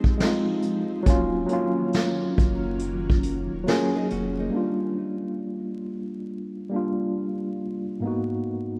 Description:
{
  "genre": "lo-fi hip hop",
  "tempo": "69 BPM",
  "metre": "4/4",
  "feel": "swing 65% on 16ths",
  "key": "unclear",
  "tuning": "A4 = 440 Hz",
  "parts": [
    { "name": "mellow tine electric piano", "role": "accompaniment", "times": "0.0-8.8 s", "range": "Ab2 to Ab4", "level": "-28 LUFS", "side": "equal", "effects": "overdrive, cassette tape" },
    { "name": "granular cloud pad", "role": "sustained chords", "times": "0.0-4.5 s", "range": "Eb3 to Eb4", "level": "-36 LUFS", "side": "equal", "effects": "built-in reverb" },
    { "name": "vintage brush drum kit", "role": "drums", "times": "0.0-4.4 s", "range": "hi-hat, kick drum, snare drum", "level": "-25 LUFS", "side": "equal", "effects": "none" },
    { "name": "warm sub bass", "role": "bass", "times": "1.1-4.5 s", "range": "Eb1 to Gb1", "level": "-36 LUFS", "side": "equal", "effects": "none" },
    { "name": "nylon-string guitar", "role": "second line", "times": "3.7-4.8 s", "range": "Bb3 to Bb4", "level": "-36 LUFS", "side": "equal", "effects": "analog delay" }
  ],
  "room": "moderate plate reverb, RT60 2.9 s",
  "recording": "rough home demo mix, vinyl crackle",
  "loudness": "-26 LUFS",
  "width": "mono",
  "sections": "0.0-4.5 A section; 4.5-8.8 B section",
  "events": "none",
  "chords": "0.0 Fm7; 1.1 Ebm7; 4.5 Gm7; 8.0 Abm7",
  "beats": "0.19 | 1.06 1.93 2.80 3.67 | 4.54 5.41 6.28 7.15 | 8.02"
}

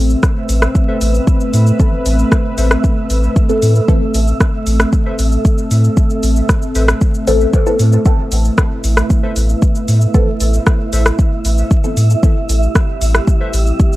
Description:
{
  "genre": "dub techno",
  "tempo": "115 BPM",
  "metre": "4/4",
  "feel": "straight",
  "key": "A minor",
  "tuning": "A4 = 440 Hz",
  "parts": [
    { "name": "dark analog pad", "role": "sustained chords", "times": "0.0-14.0 s", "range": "A3 to B4", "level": "-20 LUFS", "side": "equal", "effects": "chorus, sidechain pumping" },
    { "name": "soft dub sub bass", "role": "bass", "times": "0.0-13.7 s", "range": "A1 to A2", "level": "-12 LUFS", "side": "equal", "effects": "transformer saturation, sidechain pumping" },
    { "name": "wind-like tuned noise texture", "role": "texture", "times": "0.0-14.0 s", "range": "E4 to E5", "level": "-26 LUFS", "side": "right 4 dB", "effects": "built-in reverb, sidechain pumping" },
    { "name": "deep house drum kit", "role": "drums", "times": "0.1-14.0 s", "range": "hi-hat, rim click, shaker", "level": "-20 LUFS", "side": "equal", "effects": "none" },
    { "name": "electronic kick drum", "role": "drums", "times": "0.2-13.9 s", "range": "none", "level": "-12 LUFS", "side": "equal", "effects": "none" },
    { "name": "warbly lo-fi synth keys", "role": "riff", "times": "0.9-13.5 s", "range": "A4 to E5", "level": "-29 LUFS", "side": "left 2 dB", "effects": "chorus, sidechain pumping, dub echo" },
    { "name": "filtered dub chord stab", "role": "stabs", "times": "1.8-4.0, 7.3-12.4 s", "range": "E3 to A4", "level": "-20 LUFS", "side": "left 2 dB", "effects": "phaser, sidechain pumping, dub echo" }
  ],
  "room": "little or no reverb",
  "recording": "dry, gritty hardware recording, vinyl crackle",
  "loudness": "-11 LUFS",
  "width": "side -17 dB against mid",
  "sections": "0.0-14.0 A section",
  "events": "filter sweep on synth stab 0.0-14.0",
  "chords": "0.0 Amadd9",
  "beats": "0.23 0.75 1.27 | 1.80 2.32 2.84 3.36 | 3.88 4.41 4.93 5.45 | 5.97 6.49 7.01 7.54 | 8.06 8.58 9.10 9.62 | 10.14 10.67 11.19 11.71 | 12.23 12.75 13.27 13.80"
}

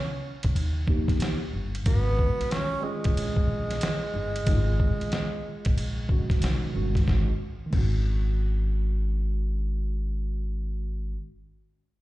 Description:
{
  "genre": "hip hop, jazz-hop",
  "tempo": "92 BPM",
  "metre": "4/4",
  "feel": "swing 63% on 16ths",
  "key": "G# dorian",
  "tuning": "A4 = 440 Hz",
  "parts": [
    { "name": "breathy tenor saxophone", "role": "melody", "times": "0.0-6.4 s", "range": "G3 to C#4", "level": "-32 LUFS", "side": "right 1 dB", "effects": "tape echo" },
    { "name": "upright bass", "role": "bass", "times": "0.4-11.1 s", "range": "G1 to D#2", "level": "-27 LUFS", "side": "equal", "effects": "none" },
    { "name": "trip hop sampler-style drum kit", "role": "drums", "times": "0.4-7.9 s", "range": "crash cymbal, hi-hat, kick drum, ride cymbal, snare drum", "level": "-27 LUFS", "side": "equal", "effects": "none" },
    { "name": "mellow tine electric piano", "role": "accompaniment", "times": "0.9-11.2 s", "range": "D#3 to G4", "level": "-33 LUFS", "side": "right 2 dB", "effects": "slow stereo tremolo" }
  ],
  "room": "little or no reverb",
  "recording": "played on a big sound system in a bare room, large studio reverb",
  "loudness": "-24 LUFS",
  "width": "side -17 dB against mid",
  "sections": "0.0-7.1 A section; 7.1-9.7 B section",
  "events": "none",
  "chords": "0.0 N.C.; 0.6 D#; 1.9 G#9sus4; 7.1 G#7sus4",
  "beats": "0.56 1.21 | 1.86 2.51 3.16 3.82 | 4.47 5.12 5.77 6.42 | 7.08 7.73 8.38 9.03"
}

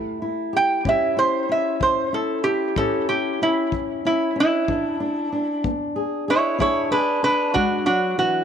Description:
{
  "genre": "acoustic country blues, solo or duo",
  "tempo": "63 BPM (dotted quarters)",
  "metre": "12/8",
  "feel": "straight",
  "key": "A mixolydian",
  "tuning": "A4 = 440 Hz",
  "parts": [
    { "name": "fingerpicked steel-string acoustic guitar", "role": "accompaniment", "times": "0.0-8.4 s", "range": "A2 to G#4", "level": "-25 LUFS", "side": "left 3 dB", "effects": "none" },
    { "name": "lap resonator guitar", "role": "melody", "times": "0.6-8.4 s", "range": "D4 to G5", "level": "-20 LUFS", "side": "right 2 dB", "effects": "tape echo" },
    { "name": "kick drum", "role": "drums", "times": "0.9-7.7 s", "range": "none", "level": "-32 LUFS", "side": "left 4 dB", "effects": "none" }
  ],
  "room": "small room ambience",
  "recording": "1960s-style stereo",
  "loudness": "-19 LUFS",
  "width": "side -8 dB against mid",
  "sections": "0.0-8.4 A section",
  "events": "none",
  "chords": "0.0 A7; 4.7 E7",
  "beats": "| 0.86 1.81 2.77 3.73 | 4.68 5.64 6.60 7.56"
}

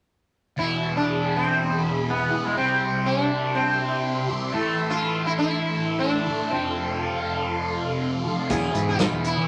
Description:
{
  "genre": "psychedelic rock",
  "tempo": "121 BPM",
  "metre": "4/4",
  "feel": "straight",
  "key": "unclear",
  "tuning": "A4 = 437 Hz",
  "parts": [
    { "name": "sitar", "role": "melody", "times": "0.6-9.5 s", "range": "G#3 to G#4", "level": "-27 LUFS", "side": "equal", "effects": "none" },
    { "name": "phased string machine", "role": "sustained chords", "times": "0.6-9.5 s", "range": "G4 to C6", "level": "-33 LUFS", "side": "equal", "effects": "ensemble chorus, phaser" },
    { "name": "thick fuzz guitar", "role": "riff", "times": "0.6-9.5 s", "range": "E2 to C4", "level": "-28 LUFS", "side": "equal", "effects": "distortion, phaser" },
    { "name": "fuzz fingered electric bass", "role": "bass", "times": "8.5-9.5 s", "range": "E2 to E3", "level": "-29 LUFS", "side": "equal", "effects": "overdrive" },
    { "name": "vintage drum kit", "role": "drums", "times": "8.5-9.4 s", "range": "hi-hat, kick drum, snare drum", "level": "-28 LUFS", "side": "equal", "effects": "none" }
  ],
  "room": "wet studio reverb, RT60 0.5 s",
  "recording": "none",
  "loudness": "-24 LUFS",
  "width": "mono",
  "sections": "0.6-9.5 A section",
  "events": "none",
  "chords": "0.6 E; 2.6 C; 4.5 Am; 6.5 F; 8.5 E",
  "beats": "| 0.58 1.07 1.57 2.06 | 2.56 3.06 3.55 4.05 | 4.54 5.04 5.53 6.03 | 6.52 7.02 7.51 8.01 | 8.50 9.00"
}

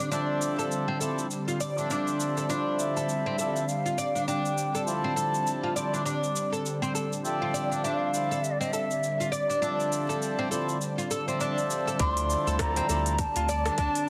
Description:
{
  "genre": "organic downtempo",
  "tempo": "101 BPM",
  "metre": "4/4",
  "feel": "swing 58% on 16ths",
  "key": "D minor",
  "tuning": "A4 = 439 Hz",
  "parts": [
    { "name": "warm analog pad", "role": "sustained chords", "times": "0.0-14.1 s", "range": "D3 to D5", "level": "-36 LUFS", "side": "equal", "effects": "chorus, sidechain pumping" },
    { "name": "oud", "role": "arpeggios", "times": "0.0-14.1 s", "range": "C4 to D5", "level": "-34 LUFS", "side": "equal", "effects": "digital delay" },
    { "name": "organic electronic drum kit", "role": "drums", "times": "0.0-14.1 s", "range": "cabasa, hi-hat, rim click", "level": "-38 LUFS", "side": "equal", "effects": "none" },
    { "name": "hand-pumped harmonium", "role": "accompaniment", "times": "0.1-13.2 s", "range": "F3 to E5", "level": "-36 LUFS", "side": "equal", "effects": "sidechain pumping, digital delay" },
    { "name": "mellow bansuri", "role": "melody", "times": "2.8-14.1 s", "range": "D5 to C6", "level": "-33 LUFS", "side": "equal", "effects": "digital delay" },
    { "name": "warm sub bass", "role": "bass", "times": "12.0-13.9 s", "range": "D2", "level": "-33 LUFS", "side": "equal", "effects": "sidechain pumping" },
    { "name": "electronic kick drum", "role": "drums", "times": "12.0-13.9 s", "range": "none", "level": "-34 LUFS", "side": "equal", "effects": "none" }
  ],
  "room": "moderate echo chamber reverb, RT60 1.6 s",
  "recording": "dense, heavily limited modern master",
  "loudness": "-28 LUFS",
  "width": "mono",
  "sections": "0.0-12.0 A section; 12.0-14.1 B section",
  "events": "none",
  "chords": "0.0 Dm7",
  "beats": "| 0.12 0.71 1.30 1.90 | 2.49 3.09 3.68 4.27 | 4.87 5.46 6.06 6.65 | 7.25 7.84 8.43 9.03 | 9.62 10.21 10.81 11.40 | 12.00 12.59 13.19 13.78"
}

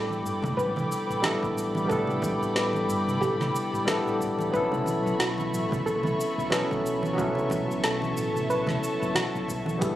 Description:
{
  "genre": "sunset chillout",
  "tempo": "91 BPM",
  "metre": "4/4",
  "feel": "swing 58% on 16ths",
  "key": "unclear",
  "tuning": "A4 = 439 Hz",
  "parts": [
    { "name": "barky tine electric piano", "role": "accompaniment", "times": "0.0-10.0 s", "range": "F#3 to A4", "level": "-29 LUFS", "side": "left 1 dB", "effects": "overdrive, auto-pan, ping-pong delay" },
    { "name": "airy breathy pad", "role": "sustained chords", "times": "0.0-10.0 s", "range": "A4 to D6", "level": "-31 LUFS", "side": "equal", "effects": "chorus" },
    { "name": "soft round pluck", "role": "arpeggios", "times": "0.0-10.0 s", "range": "F#4 to B4", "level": "-32 LUFS", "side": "equal", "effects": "chorus, ping-pong delay" },
    { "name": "mellow fretless electric bass", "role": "bass", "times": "0.0-10.0 s", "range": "G1 to B1", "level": "-34 LUFS", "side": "equal", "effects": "lush chorus" },
    { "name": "deep house drum kit", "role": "drums", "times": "0.1-10.0 s", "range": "hi-hat, shaker, snare drum", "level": "-32 LUFS", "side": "equal", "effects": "none" },
    { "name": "congas", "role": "percussion", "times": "0.1-9.8 s", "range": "none", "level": "-34 LUFS", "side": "right 2 dB", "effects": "none" },
    { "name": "electronic kick drum", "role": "drums", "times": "0.4-10.0 s", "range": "none", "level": "-35 LUFS", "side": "equal", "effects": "overdrive" }
  ],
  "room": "moderate lush hall reverb, RT60 2.4 s",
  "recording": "recorded on a phone in the room, studio reverb, compression",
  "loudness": "-24 LUFS",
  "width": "side -13 dB against mid",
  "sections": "0.0-10.0 A section",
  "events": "none",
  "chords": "0.0 A9sus4; 4.5 B9sus4",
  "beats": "0.58 1.24 | 1.90 2.56 3.22 3.88 | 4.54 5.20 5.86 6.52 | 7.18 7.83 8.49 9.15 | 9.81"
}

